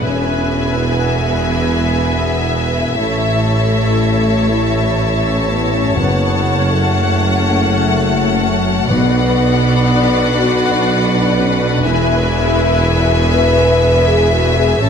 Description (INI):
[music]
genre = cinematic, epic orchestral film score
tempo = 81 BPM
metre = 4/4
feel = straight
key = unclear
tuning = A4 = 441 Hz
[part]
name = warm symphonic violin section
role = second line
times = 0.0-14.9 s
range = D5 to F#5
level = -22 LUFS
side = left 5 dB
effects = none
[part]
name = warm symphonic viola section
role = accompaniment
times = 0.0-14.9 s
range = B4 to C#5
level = -24 LUFS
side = equal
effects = none
[part]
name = mellow French horn section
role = sustained chords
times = 0.0-14.9 s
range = A3 to B4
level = -19 LUFS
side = left 4 dB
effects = none
[part]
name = rich symphonic string section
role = sustained chords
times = 0.0-14.9 s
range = A3 to F#5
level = -22 LUFS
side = left 1 dB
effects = none
[part]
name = rich symphonic cello section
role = bass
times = 0.0-14.9 s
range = E2 to B2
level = -20 LUFS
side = right 1 dB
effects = none
[part]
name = warm symphonic double bass section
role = bass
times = 0.0-14.9 s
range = E1 to B1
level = -19 LUFS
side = right 2 dB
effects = none
[part]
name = warm tuba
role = bass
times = 0.0-14.9 s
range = E1 to B1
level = -21 LUFS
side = right 4 dB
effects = none
[part]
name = warm symphonic violin section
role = melody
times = 0.1-14.9 s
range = F#5 to A5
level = -24 LUFS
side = left 4 dB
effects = none
[part]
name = timpani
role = percussion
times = 6.0-10.0 s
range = F#2 to B2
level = -22 LUFS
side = left 1 dB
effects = none
[sound]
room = moderate scoring stage reverb, RT60 1.7 s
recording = none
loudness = -12 LUFS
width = side -7 dB against mid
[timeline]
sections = 0.0-14.9 A section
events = none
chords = 0.0 E; 3.0 A; 6.0 F#m; 8.9 Bm; 11.8 E